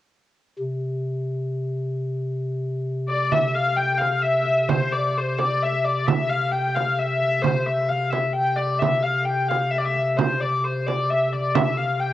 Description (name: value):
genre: medieval dance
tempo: 131 BPM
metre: 3/4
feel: straight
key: C major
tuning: A4 = 440 Hz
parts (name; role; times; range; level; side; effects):
- pipe organ, stopped flute; drone; 0.6-12.1 s; C3; -26 LUFS; equal; cassette tape
- dark hurdy-gurdy; melody; 3.1-12.1 s; C5 to G5; -21 LUFS; left 2 dB; cassette tape
- frame drum; percussion; 3.3-11.8 s; none; -24 LUFS; right 6 dB; none
room: moderate spring reverb, RT60 2.4 s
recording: home recording on cassette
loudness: -20 LUFS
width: side -13 dB against mid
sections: 0.6-3.3 A section; 3.3-12.1 B section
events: none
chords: none